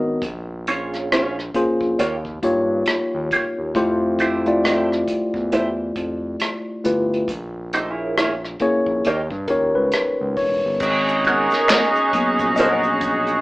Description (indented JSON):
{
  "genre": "R&B, neo-soul",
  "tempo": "68 BPM",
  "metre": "4/4",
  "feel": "swing 61% on 16ths",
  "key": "unclear",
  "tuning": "A4 = 440 Hz",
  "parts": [
    { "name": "tine electric piano", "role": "accompaniment", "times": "0.0-13.4 s", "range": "A#2 to D#5", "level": "-20 LUFS", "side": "left 1 dB", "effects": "overdrive" },
    { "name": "smooth synth bass", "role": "bass", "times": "0.0-13.4 s", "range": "E1 to G2", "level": "-29 LUFS", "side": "equal", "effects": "none" },
    { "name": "unplugged drum kit", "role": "drums", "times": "0.2-13.4 s", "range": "crash cymbal, handclaps, hi-hat, kick drum, rim click, snare drum", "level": "-25 LUFS", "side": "equal", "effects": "none" },
    { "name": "vintage hollow-body jazz guitar", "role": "second line", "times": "0.7-12.8 s", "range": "A3 to C#5", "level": "-21 LUFS", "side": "right 1 dB", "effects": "wah" },
    { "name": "warm woodwind section", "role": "sustained chords", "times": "10.8-13.4 s", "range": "G#3 to F#4", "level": "-22 LUFS", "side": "equal", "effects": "none" },
    { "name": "bright saxophone section", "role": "stabs", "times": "10.8-13.4 s", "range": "C#4 to G#4", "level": "-21 LUFS", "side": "right 2 dB", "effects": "none" },
    { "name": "tube shaker and finger snaps", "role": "percussion", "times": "10.8-13.4 s", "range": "none", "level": "-32 LUFS", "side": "left 1 dB", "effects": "none" }
  ],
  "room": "moderate studio reverb, RT60 0.8 s",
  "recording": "band playing live in one room, AM radio sound",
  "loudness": "-18 LUFS",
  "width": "side -19 dB against mid",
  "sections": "0.0-10.8 A section; 10.8-13.4 B section",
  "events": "tine electric piano solo 10.8-13.4",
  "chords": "0.2 A#m7; 2.0 D#9; 3.7 Fmaj9; 7.3 A#m7b5; 9.0 D#7; 10.8 G#m11"
}